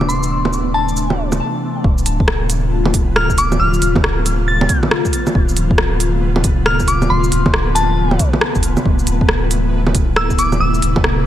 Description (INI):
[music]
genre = future garage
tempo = 137 BPM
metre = 4/4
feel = swing 63% on 16ths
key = D dorian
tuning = A4 = 440 Hz
[part]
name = glassy synth bell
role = melody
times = 0.0-10.8 s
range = A5 to A6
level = -21 LUFS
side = left 1 dB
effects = chorus, tremolo, tape echo
[part]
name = ethereal airy pad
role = sustained chords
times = 0.0-11.3 s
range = C3 to F4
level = -22 LUFS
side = left 1 dB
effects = ensemble chorus, built-in reverb, sidechain pumping
[part]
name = soft dub sub bass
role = bass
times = 0.0-11.3 s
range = D1 to F1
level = -19 LUFS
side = equal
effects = sidechain pumping
[part]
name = organic electronic drum kit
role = drums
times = 0.0-11.2 s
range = bongos, hi-hat, rim click, shaker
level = -19 LUFS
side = right 1 dB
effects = none
[part]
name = flickering grainy texture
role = texture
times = 0.0-11.3 s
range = B3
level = -28 LUFS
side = right 2 dB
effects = built-in reverb
[part]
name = electronic kick drum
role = drums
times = 1.8-11.0 s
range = none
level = -17 LUFS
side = equal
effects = none
[sound]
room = little or no reverb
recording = none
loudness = -13 LUFS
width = side -12 dB against mid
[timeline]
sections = 0.0-1.8 A section; 1.8-11.3 B section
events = filter sweep on drum 0.0-1.8; break 1.4-1.8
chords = 0.0 Amadd9/D; 1.8 Dm7; 8.9 Amadd9/D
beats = | 0.09 0.53 0.97 1.41 | 1.84 2.28 2.72 3.16 | 3.60 4.04 4.47 4.91 | 5.35 5.79 6.22 6.66 | 7.10 7.54 7.98 8.41 | 8.85 9.29 9.73 10.17 | 10.60 11.04